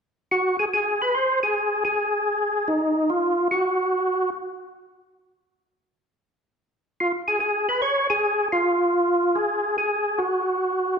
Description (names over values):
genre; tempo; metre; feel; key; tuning
jazz; 144 BPM; 4/4; swing 66% on 8ths; unclear; A4 = 441 Hz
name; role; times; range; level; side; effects
percussive tonewheel organ; solo; 0.3-4.3, 7.0-11.0 s; Eb4 to Db5; -20 LUFS; equal; overdrive, chorus vibrato, stopped rotary speaker
room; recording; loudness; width
wet recital hall reverb, RT60 1.6 s; recorded in a church or concert hall; -20 LUFS; side -6 dB against mid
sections
0.3-11.0 A section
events
none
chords
none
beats
| 0.31 0.72 1.14 1.56 | 1.97 2.39 2.81 3.23 | 3.64 4.06 4.47 4.89 | 5.31 5.73 6.14 6.56 | 6.98 7.39 7.81 8.23 | 8.64 9.06 9.48 9.90 | 10.31 10.73